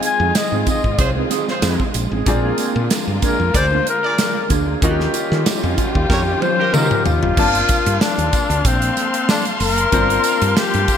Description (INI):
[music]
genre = polished 1980s jazz-funk pop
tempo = 94 BPM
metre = 4/4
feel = swing 54% on 16ths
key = G minor from 7.4 s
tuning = A4 = 440 Hz
[part]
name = bright grand piano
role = accompaniment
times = 0.0-11.0 s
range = Ab3 to A5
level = -24 LUFS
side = left 3 dB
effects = lush chorus
[part]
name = dark studio string section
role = sustained chords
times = 0.0-11.0 s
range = D3 to C6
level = -26 LUFS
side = equal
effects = none
[part]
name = mellow electric guitar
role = riff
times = 0.0-7.4 s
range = Bb3 to Bb4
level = -25 LUFS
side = right 5 dB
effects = analog chorus
[part]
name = modern studio drum kit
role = drums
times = 0.0-11.0 s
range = crash cymbal, hi-hat, kick drum, snare drum, toms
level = -20 LUFS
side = right 1 dB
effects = gated reverb
[part]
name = tambourine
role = percussion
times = 0.0-11.0 s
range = none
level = -33 LUFS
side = right 6 dB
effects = none
[part]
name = breathy flugelhorn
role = melody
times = 0.1-11.0 s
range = C4 to Ab5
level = -20 LUFS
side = left 4 dB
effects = ping-pong delay
[part]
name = woody fretless electric bass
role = bass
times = 0.2-10.9 s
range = Gb1 to Eb3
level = -20 LUFS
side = equal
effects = none
[part]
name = warm horn section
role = second line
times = 1.0-7.0 s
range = F4 to D5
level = -26 LUFS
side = right 2 dB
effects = none
[sound]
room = moderate lush hall reverb, RT60 2.8 s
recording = bright 1980s-style digital production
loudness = -15 LUFS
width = side -8 dB against mid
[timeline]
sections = 0.0-7.4 A section; 7.4-11.0 B section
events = drum fill 6.1-7.4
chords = 0.0 Fm7; 2.3 Bb7; 4.8 Eb9; 7.4 Gm11